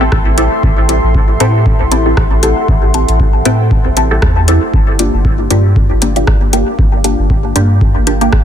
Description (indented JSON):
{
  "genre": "dub techno",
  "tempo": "117 BPM",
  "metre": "4/4",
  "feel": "swing 56% on 16ths",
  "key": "G dorian",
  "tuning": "A4 = 440 Hz",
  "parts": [
    { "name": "deep dark ambient pad", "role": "sustained chords", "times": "0.0-8.4 s", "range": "A4 to D6", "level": "-20 LUFS", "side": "equal", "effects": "chorus, built-in reverb, vintage 12-bit sampler grit, sidechain pumping" },
    { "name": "filtered dub chord stab", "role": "stabs", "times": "0.0-8.3 s", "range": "Bb3 to A4", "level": "-15 LUFS", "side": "equal", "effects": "phaser, sidechain pumping, dub echo" },
    { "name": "soft dub sub bass", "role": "bass", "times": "0.0-8.4 s", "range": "G1 to A2", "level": "-14 LUFS", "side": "equal", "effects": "sidechain pumping" },
    { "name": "deep house drum kit", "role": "drums", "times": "0.1-8.4 s", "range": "hi-hat, rim click", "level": "-19 LUFS", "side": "left 2 dB", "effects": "overdrive, small room ambience, dub echo" },
    { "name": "electronic kick drum", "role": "drums", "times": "0.1-8.4 s", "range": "none", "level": "-13 LUFS", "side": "equal", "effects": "small room ambience" },
    { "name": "filtered dub chord stab", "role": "riff", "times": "1.4-3.6 s", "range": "B4 to G5", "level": "-30 LUFS", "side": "right 3 dB", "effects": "none" }
  ],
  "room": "little or no reverb",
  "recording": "dense, heavily limited modern master",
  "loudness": "-9 LUFS",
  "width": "side -9 dB against mid",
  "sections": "0.0-4.7 A section; 4.7-8.4 A section",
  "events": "none",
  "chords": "0.0 Am7; 4.7 Gm7"
}